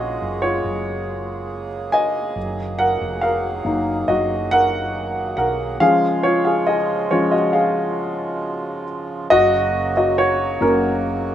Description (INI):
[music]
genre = pop ballad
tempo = 69 BPM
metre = 4/4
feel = straight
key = F# major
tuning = A4 = 440 Hz
[part]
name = warm baby grand piano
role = accompaniment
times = 0.0-11.3 s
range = E#3 to G#5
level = -18 LUFS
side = equal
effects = none
[part]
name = hand-pumped harmonium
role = sustained chords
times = 0.0-11.3 s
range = C#3 to G#4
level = -27 LUFS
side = right 4 dB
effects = none
[part]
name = woody fretless electric bass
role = bass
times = 0.0-11.3 s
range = E#1 to B1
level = -30 LUFS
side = equal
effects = ensemble chorus
[sound]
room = light reverb, small room ambience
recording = rough home demo mix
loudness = -17 LUFS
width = side -10 dB against mid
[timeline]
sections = 0.0-9.3 A section; 9.3-11.3 B section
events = grand piano solo 0.0-9.3, 9.3-11.3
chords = 0.0 F#add9; 2.4 D#m; 5.8 C#; 9.3 F#